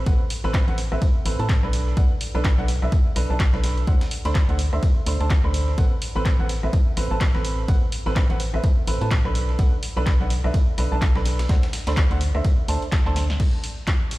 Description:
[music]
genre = piano house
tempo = 126 BPM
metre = 4/4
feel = swing 58% on 16ths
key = A dorian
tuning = A4 = 440 Hz
[part]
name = clear upright piano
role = riff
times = 0.0-13.2 s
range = C4 to B5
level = -29 LUFS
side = right 2 dB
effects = sidechain pumping, dub echo
[part]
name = organ-like FM bass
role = bass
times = 0.0-13.4 s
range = A1 to A2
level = -24 LUFS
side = equal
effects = sidechain pumping
[part]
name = breakbeat sampler-style drum kit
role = drums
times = 0.1-14.2 s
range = hi-hat, ride cymbal, snare drum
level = -39 LUFS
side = equal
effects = sidechain pumping on cymbals, high-pass filter on cymbals, high-pass filter on snare, sidechain pumping on hats, high-pass filter on hats
[part]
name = electronic kick drum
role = drums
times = 0.1-14.0 s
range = none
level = -20 LUFS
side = equal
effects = none
[part]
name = punchy analog drum machine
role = drums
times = 0.3-14.2 s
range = crash cymbal, handclaps, hi-hat, rim click, snare drum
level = -32 LUFS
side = equal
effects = none
[sound]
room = digital ambience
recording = played on a big sound system in a bare room, stone room reverb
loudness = -19 LUFS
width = side -18 dB against mid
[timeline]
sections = 0.0-13.4 A section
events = drop 0.0-13.4; drum fill 12.9-13.4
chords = 0.0 Amadd9; 1.7 Bm7; 3.9 D7(no3); 5.8 Amadd9; 9.3 Bm7; 11.5 D7(no3); 13.4 N.C.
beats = | 0.07 0.54 1.02 1.49 | 1.97 2.45 2.92 3.40 | 3.87 4.35 4.83 5.30 | 5.78 6.25 6.73 7.21 | 7.68 8.16 8.64 9.11 | 9.59 10.06 10.54 11.02 | 11.49 11.97 12.45 12.92 | 13.40 13.87

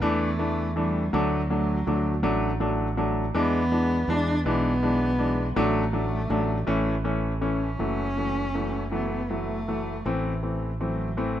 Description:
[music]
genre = six-eight pop ballad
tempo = 54 BPM (dotted quarters)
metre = 6/8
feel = straight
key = D major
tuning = A4 = 440 Hz
[part]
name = dark cello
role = melody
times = 0.0-11.4 s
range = E3 to D4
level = -30 LUFS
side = equal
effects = none
[part]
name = clear baby grand piano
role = accompaniment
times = 0.0-11.4 s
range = E3 to D4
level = -26 LUFS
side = left 1 dB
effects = none
[part]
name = fingered electric bass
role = bass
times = 0.0-11.4 s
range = F#1 to E2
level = -29 LUFS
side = right 1 dB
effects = none
[sound]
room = moderate lush hall reverb, RT60 2.7 s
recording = rough home demo mix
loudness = -23 LUFS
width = side -11 dB against mid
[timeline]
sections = 0.0-7.8 A section; 7.8-11.4 B section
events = none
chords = 0.0 Asus4; 1.1 D; 3.3 E7; 5.6 D/A; 6.7 A; 7.8 F#m7; 10.1 Am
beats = 0.03 | 1.14 2.25 | 3.35 4.46 | 5.57 6.68 | 7.80 8.93 | 10.05 11.18

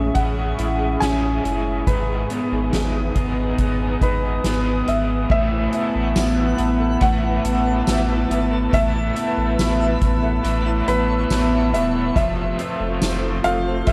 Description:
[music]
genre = dream pop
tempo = 70 BPM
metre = 4/4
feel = straight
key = A lydian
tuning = A4 = 444 Hz
[part]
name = felt-muted upright piano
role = melody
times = 0.0-13.9 s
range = B4 to G#5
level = -28 LUFS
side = equal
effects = tape echo
[part]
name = raw garage guitar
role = accompaniment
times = 0.0-13.9 s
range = F2 to G#4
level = -30 LUFS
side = equal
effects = overdrive, tremolo, subtle chorus
[part]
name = granular cloud pad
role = sustained chords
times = 0.0-13.9 s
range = F4 to E6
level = -31 LUFS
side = equal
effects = built-in reverb
[part]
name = electric guitar at the edge of break-up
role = arpeggios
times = 0.0-13.9 s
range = G#2 to A4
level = -26 LUFS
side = equal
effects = analog chorus, tape echo
[part]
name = warm sub bass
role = bass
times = 0.0-13.9 s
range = D#1 to A1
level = -26 LUFS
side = equal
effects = none
[part]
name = soft-mallet drum kit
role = drums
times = 0.1-13.9 s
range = crash cymbal, hi-hat, kick drum, snare drum, tambourine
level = -28 LUFS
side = equal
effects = none
[part]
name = twinkling granular texture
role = texture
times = 6.0-12.4 s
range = C#5 to B5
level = -39 LUFS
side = equal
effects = built-in reverb, tape echo
[sound]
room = light reverb, small room ambience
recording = dark, warm production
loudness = -20 LUFS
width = mono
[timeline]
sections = 0.0-5.3 A section; 5.3-13.9 B section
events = none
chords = 0.0 Amaj7; 1.9 G#m; 5.3 Asus2; 12.2 F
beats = 0.16 1.01 | 1.87 2.73 3.59 4.44 | 5.30 6.16 7.01 7.87 | 8.73 9.59 10.44 11.30 | 12.16 13.01 13.87

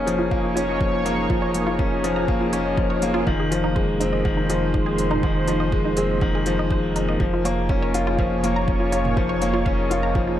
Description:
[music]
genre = piano and strings electronica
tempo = 122 BPM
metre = 4/4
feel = straight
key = F minor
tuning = A4 = 441 Hz
[part]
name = lush unison pad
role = sustained chords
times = 0.0-10.4 s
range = Bb3 to Db5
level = -28 LUFS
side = right 1 dB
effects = chorus, sidechain pumping
[part]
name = warm upright piano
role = riff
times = 0.0-10.4 s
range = Eb3 to F4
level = -22 LUFS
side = left 2 dB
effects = digital delay
[part]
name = round analog bass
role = bass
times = 0.0-10.4 s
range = F1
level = -28 LUFS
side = equal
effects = sidechain pumping
[part]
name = deep house drum kit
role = drums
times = 0.1-10.0 s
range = hi-hat, toms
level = -33 LUFS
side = equal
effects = small room ambience
[part]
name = wide unison pluck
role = arpeggios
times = 0.2-10.3 s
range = Eb4 to Bb5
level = -29 LUFS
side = equal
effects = sidechain pumping, digital delay
[part]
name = electronic kick drum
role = drums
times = 0.3-10.2 s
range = none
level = -24 LUFS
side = equal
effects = small room ambience
[sound]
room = moderate echo chamber reverb, RT60 2.0 s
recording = dark, warm production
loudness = -19 LUFS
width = side -11 dB against mid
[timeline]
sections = 0.0-3.3 A section; 3.3-10.4 B section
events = build-up 0.0-3.3; filter sweep on synth arpeggio sound 0.0-3.3; drop 3.3-10.4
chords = 0.0 Bbm/F; 3.3 Fm7; 7.2 Bbm/F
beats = 0.32 0.81 | 1.30 1.79 2.28 2.77 | 3.27 3.76 4.25 4.74 | 5.23 5.73 6.22 6.71 | 7.20 7.69 8.19 8.68 | 9.17 9.66 10.15

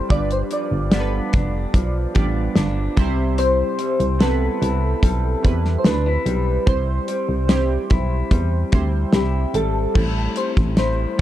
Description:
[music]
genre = indie pop, bedroom pop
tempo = 73 BPM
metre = 4/4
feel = straight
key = C major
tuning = A4 = 441 Hz
[part]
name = soft electric-piano-like synth keys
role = melody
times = 0.0-11.2 s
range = G4 to D5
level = -25 LUFS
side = left 1 dB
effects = ensemble chorus, tape echo
[part]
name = chorused retro synth keys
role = accompaniment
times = 0.0-11.2 s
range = G3 to D5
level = -28 LUFS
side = right 5 dB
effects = none
[part]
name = electric guitar through a small old amp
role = accompaniment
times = 0.0-11.2 s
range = G2 to E4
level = -28 LUFS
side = left 4 dB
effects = lush chorus, warbly pitch drift
[part]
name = solid FM bass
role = bass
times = 0.1-11.1 s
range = F1 to E2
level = -21 LUFS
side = equal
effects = none
[part]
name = damped 70s drum kit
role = drums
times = 0.1-11.2 s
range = crash cymbal, hi-hat, kick drum, snare drum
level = -19 LUFS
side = equal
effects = none
[sound]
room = light reverb, studio ambience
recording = dark, warm production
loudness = -17 LUFS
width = side -13 dB against mid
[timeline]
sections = 0.0-10.0 A section; 10.0-11.2 B section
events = none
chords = 0.1 G7; 3.0 Cmaj7; 10.0 Am7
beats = | 0.10 0.92 1.74 2.56 | 3.39 4.21 5.03 5.85 | 6.67 7.49 8.31 9.13 | 9.96 10.78

